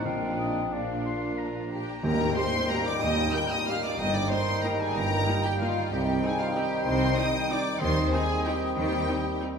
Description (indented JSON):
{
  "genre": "classical, orchestral ballroom waltz",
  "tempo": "186 BPM",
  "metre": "3/4",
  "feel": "uneven beats, rubato",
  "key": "Eb major",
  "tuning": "A4 = 440 Hz",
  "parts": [
    { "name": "warm studio violin section", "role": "melody", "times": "0.0-9.4 s", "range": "Bb4 to G6", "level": "-33 LUFS", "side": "left 3 dB", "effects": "none" },
    { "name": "clear oboe", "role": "second line", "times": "0.0-9.4 s", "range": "D5 to C6", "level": "-36 LUFS", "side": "right 1 dB", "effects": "none" },
    { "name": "hollow small flute group", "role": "second line", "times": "0.0-9.4 s", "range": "F4 to G5", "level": "-35 LUFS", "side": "left 2 dB", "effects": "none" },
    { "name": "rich studio violin section", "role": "second line", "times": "0.0-9.4 s", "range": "F4 to G5", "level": "-36 LUFS", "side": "left 4 dB", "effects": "none" },
    { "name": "warm bassoon", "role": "accompaniment", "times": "0.0-9.4 s", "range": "C4 to Eb4", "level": "-36 LUFS", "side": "right 1 dB", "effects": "none" },
    { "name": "warm studio viola section", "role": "accompaniment", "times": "0.0-9.5 s", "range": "Bb3 to G4", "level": "-37 LUFS", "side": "right 1 dB", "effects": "none" },
    { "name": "mellow French horn section", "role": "sustained chords", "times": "0.0-9.5 s", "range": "Bb3 to Eb4", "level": "-36 LUFS", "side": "left 3 dB", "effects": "none" },
    { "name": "warm trombone section", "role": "sustained chords", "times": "0.0-9.5 s", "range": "Bb2 to G3", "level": "-35 LUFS", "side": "right 2 dB", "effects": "none" },
    { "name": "mellow tuba", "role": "bass", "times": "0.0-9.0 s", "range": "G1 to Eb2", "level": "-35 LUFS", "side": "right 2 dB", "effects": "none" },
    { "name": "rich studio cello section", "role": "bass", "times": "0.0-9.0 s", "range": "Eb2 to Eb3", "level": "-35 LUFS", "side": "right 1 dB", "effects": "none" },
    { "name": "warm studio double bass section", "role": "bass", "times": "0.0-9.0 s", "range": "G1 to Eb2", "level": "-34 LUFS", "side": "right 2 dB", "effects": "none" },
    { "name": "cymbal swell and tam-tam", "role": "percussion", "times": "0.1-3.3 s", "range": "none", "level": "-41 LUFS", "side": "left 2 dB", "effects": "none" },
    { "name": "timpani", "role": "percussion", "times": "0.1-2.5, 7.8-8.3 s", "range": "Bb2 to Eb3", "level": "-37 LUFS", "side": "left 2 dB", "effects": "none" }
  ],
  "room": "wet scoring stage reverb, RT60 1.7 s",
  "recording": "minimal, uncompressed stereo recording",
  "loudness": "-24 LUFS",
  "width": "side -6 dB against mid",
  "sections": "0.0-2.0 A section; 2.0-9.6 B section",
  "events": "band accent 2.0-2.4",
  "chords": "0.1 Bb; 2.0 Eb; 4.0 Eb/G; 5.9 Cm; 7.8 Cm/Eb"
}